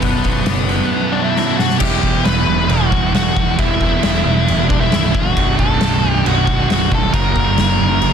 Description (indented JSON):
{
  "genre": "quiet-loud alternative rock",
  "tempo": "135 BPM",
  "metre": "4/4",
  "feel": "straight",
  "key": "unclear",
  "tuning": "A4 = 441 Hz",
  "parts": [
    { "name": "octave-fuzz lead guitar", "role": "melody", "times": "0.0-8.1 s", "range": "B3 to B4", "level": "-19 LUFS", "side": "left 7 dB", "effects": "distortion, slapback echo" },
    { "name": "twangy electric guitar", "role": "arpeggios", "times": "0.0-2.3 s", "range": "B1 to D4", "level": "-24 LUFS", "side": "left 11 dB", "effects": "phaser" },
    { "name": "thick fuzz guitar", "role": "riff", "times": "0.0-8.1 s", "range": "B1 to F#4", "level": "-18 LUFS", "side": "right 9 dB", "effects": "distortion" },
    { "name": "fuzz picked electric bass", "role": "bass", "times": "0.0-8.1 s", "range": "B0 to F#1", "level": "-20 LUFS", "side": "left 1 dB", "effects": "overdrive" },
    { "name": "oversized low-tuned drum kit", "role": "drums", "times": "0.0-8.1 s", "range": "crash cymbal, hi-hat, kick drum, snare drum", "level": "-18 LUFS", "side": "equal", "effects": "none" }
  ],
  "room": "light reverb, small room ambience",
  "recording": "dense, heavily limited modern master",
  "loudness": "-13 LUFS",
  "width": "side -7 dB against mid",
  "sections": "0.0-1.8 A section; 1.8-8.1 B section",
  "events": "drum fill 1.4-1.8",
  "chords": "0.0 Bm; 1.8 Emadd9; 5.4 Bm7; 7.1 F#"
}